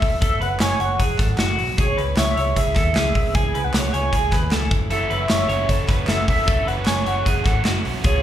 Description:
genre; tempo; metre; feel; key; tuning
jangly indie pop; 153 BPM; 4/4; straight; unclear; A4 = 440 Hz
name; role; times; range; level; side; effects
warm velvety synth lead; melody; 0.0-8.2 s; C#5 to G#5; -25 LUFS; equal; chorus, slapback echo
dark studio string section; sustained chords; 0.0-8.2 s; C#3 to E#4; -35 LUFS; equal; none
electric guitar through a small old amp; arpeggios; 0.0-8.2 s; F#4 to C#5; -25 LUFS; equal; slapback echo
vintage muted fingered electric bass; bass; 0.0-8.2 s; E1 to D#2; -25 LUFS; equal; none
big rock drum kit; drums; 0.0-8.1 s; hi-hat, kick drum, snare drum; -21 LUFS; equal; none
group handclap; percussion; 0.6-7.7 s; none; -34 LUFS; right 2 dB; none
overdriven electric guitar; accompaniment; 4.9-8.2 s; F#2 to F#4; -29 LUFS; right 8 dB; slapback echo
room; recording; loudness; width
small room ambience; live gig heard through the venue's PA, club reverb; -17 LUFS; side -11 dB against mid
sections
0.0-8.2 A section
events
none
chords
0.0 F#m7; 1.8 C#m7; 4.7 F#m7

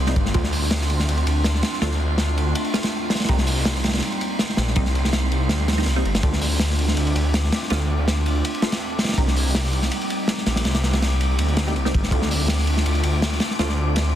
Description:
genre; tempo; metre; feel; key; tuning
drum and bass, jungle; 163 BPM; 4/4; swing 53% on 16ths; D phrygian; A4 = 440 Hz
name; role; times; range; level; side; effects
warbly tape-like pad; sustained chords; 0.0-14.2 s; G3 to F4; -28 LUFS; right 1 dB; chorus, built-in reverb
detuned saw bass; bass; 0.0-14.2 s; G1 to D2; -21 LUFS; equal; none
wind-like tuned noise texture; texture; 0.0-14.2 s; C6 to D6; -34 LUFS; equal; built-in reverb
filtered dub chord stab; stabs; 0.1-9.3, 11.7-13.7 s; G3 to F4; -32 LUFS; right 2 dB; phaser, dub echo
crunchy breakbeat drum kit; drums; 0.1-14.1 s; hi-hat, kick drum, ride cymbal, snare drum; -23 LUFS; equal; none
room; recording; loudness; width
small room ambience; dense, heavily limited modern master; -19 LUFS; side -11 dB against mid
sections
0.0-14.2 A section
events
none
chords
0.3 Dm7; 3.3 Cm7; 6.2 Dm7; 9.2 Cm7; 12.1 Dm7

